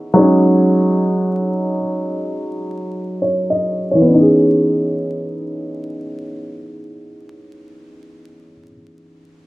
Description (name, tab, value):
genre	hip hop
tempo	free time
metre	none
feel	none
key	C# minor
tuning	A4 = 439 Hz
part	dark upright piano	accompaniment	0.0-9.5 s	E3 to D#5	-15 LUFS	equal	low-pass filter
room	moderate studio reverb, RT60 0.6 s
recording	dark, warm production, vinyl crackle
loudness	-14 LUFS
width	side -18 dB against mid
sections	0.0-4.1 A section; 4.1-7.6 B section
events	filter sweep on upright piano 0.0-4.1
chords	0.2 G#7sus4; 4.1 C#m9